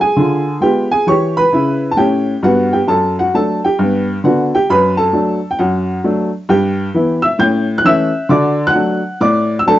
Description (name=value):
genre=jazz, stride piano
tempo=133 BPM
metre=4/4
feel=swing 63% on 8ths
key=D major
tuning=A4 = 440 Hz
part: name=clear upright piano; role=solo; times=0.0-9.8 s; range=F#2 to G6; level=-12 LUFS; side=equal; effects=none
room=moderate studio reverb, RT60 0.5 s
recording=worn, warbling old tape, cassette tape, warbly pitch drift, nothing above 7.6 kHz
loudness=-12 LUFS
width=side -14 dB against mid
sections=0.0-9.8 A section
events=none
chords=0.2 Ddim7; 1.1 A7; 2.9 D/F#; 3.8 G; 4.7 D/F#; 6.5 Em/G; 7.4 A7; 8.3 D